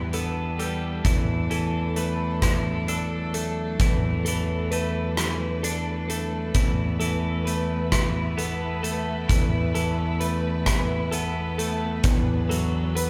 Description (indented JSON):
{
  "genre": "post-rock",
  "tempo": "44 BPM (dotted quarters)",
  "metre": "6/8",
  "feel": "straight",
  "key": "unclear",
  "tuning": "A4 = 440 Hz",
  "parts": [
    { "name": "bright studio string section", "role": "sustained chords", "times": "0.0-13.1 s", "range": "F#3 to B4", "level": "-37 LUFS", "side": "equal", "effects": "none" },
    { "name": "twelve-string electric guitar", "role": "arpeggios", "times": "0.0-13.1 s", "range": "E2 to D4", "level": "-34 LUFS", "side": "equal", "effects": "none" },
    { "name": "twelve-string electric guitar", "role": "arpeggios", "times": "0.0-13.1 s", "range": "A4 to B4", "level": "-36 LUFS", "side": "equal", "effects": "none" },
    { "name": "growling fingered electric bass", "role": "bass", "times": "0.0-13.1 s", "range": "E2", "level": "-29 LUFS", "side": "equal", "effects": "overdrive" },
    { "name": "huge arena drum kit", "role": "drums", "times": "0.1-13.1 s", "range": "hi-hat, kick drum, rim click", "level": "-28 LUFS", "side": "equal", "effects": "none" }
  ],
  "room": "moderate concert hall reverb, RT60 2.2 s",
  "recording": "recorded in a church or concert hall",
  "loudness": "-25 LUFS",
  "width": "mono",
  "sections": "0.0-13.1 A section",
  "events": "none",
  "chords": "0.0 Em; 1.1 D/E; 6.5 Asus2/E; 12.0 Bm/E",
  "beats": "| 1.05 2.43 | 3.80 5.17 | 6.55 7.92 | 9.29 10.67 | 12.04"
}